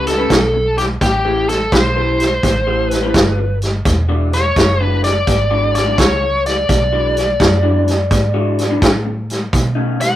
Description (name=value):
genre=electric blues shuffle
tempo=84 BPM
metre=4/4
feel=swing 67% on 8ths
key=E mixolydian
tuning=A4 = 439 Hz
part: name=biting lead guitar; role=melody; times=0.0-10.2 s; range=G4 to F#5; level=-17 LUFS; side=left 1 dB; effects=overdrive
part: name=electric guitar through a small old amp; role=riff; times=0.0-10.0 s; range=B2 to C5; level=-21 LUFS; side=left 1 dB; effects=phaser
part: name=vintage muted fingered electric bass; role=bass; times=0.0-10.2 s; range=E1 to B2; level=-19 LUFS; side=equal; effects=none
part: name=vintage drum kit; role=drums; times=0.1-10.1 s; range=hi-hat, kick drum, snare drum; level=-16 LUFS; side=equal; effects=none
room=moderate studio reverb, RT60 0.5 s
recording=rough rehearsal-room recording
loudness=-13 LUFS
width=side -13 dB against mid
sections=0.0-10.2 A section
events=none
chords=0.0 A9; 1.0 Am7; 3.9 E9; 9.5 B9